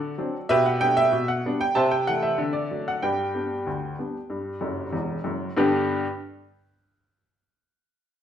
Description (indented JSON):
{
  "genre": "ragtime piano",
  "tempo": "95 BPM",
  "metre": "2/4",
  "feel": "straight",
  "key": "G major",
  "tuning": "A4 = 440 Hz",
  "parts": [
    { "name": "warm upright piano", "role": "solo", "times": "0.0-6.0 s", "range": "E1 to A5", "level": "-22 LUFS", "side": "equal", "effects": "none" }
  ],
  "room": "wet large studio reverb, RT60 0.9 s",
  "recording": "band playing live in one room",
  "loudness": "-22 LUFS",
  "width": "side -9 dB against mid",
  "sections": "0.0-5.6 A section; 5.6-6.8 B section",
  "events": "upright piano fill 4.6-5.6",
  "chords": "0.0 D7; 0.5 G/B; 1.8 Am/C; 2.4 D; 3.0 G"
}